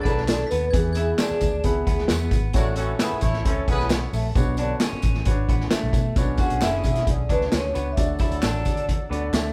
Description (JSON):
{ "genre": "uptempo 1960s-style soul", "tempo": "133 BPM", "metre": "4/4", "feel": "straight", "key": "B dorian", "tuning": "A4 = 440 Hz", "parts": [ { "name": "vibraphone with soft mallets", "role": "melody", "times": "0.0-2.3, 6.4-9.3 s", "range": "G#4 to F#5", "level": "-29 LUFS", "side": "equal", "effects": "none" }, { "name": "glockenspiel with brass mallets", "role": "second line", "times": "0.0-2.3 s", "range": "G#6 to B6", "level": "-42 LUFS", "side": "equal", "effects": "none" }, { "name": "warm horn section", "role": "second line", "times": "0.0-9.5 s", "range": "D3 to C#5", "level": "-34 LUFS", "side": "equal", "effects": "none" }, { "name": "warm grand piano", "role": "accompaniment", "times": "0.0-9.5 s", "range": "A2 to D5", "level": "-33 LUFS", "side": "equal", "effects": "none" }, { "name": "electric guitar through a small old amp", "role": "riff", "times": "0.1-9.5 s", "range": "A3 to F#4", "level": "-34 LUFS", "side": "equal", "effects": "none" }, { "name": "vintage muted fingered electric bass", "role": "bass", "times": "0.1-9.5 s", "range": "F#1 to D3", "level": "-29 LUFS", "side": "equal", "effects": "none" }, { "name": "vintage drum kit", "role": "drums", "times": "0.1-9.4 s", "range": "hi-hat, kick drum, snare drum", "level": "-26 LUFS", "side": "equal", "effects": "none" }, { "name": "tambourine and handclaps", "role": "percussion", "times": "0.1-9.4 s", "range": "none", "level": "-40 LUFS", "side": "equal", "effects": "none" } ], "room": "light reverb", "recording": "band playing live in one room", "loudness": "-23 LUFS", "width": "mono", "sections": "0.0-6.2 A section; 6.2-9.5 B section", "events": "none", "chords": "0.0 Bm7; 0.7 E; 2.5 A; 4.4 Bmadd9; 8.0 D" }